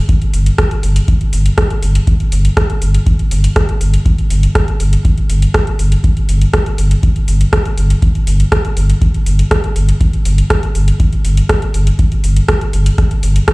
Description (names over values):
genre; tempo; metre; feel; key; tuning
dub techno; 121 BPM; 4/4; straight; unclear; A4 = 438 Hz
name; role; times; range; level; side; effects
booming analog drum machine; drums; 0.1-13.5 s; hi-hat, rim click; -20 LUFS; right 1 dB; none
electronic kick drum; drums; 0.1-13.5 s; none; -14 LUFS; equal; none
soft dub sub bass; bass; 0.3-13.4 s; G1; -11 LUFS; equal; tube saturation, sidechain pumping
room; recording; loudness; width
digital ambience; played on a big sound system in a bare room, large studio reverb; -11 LUFS; side -24 dB against mid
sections
0.0-13.5 A section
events
none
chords
none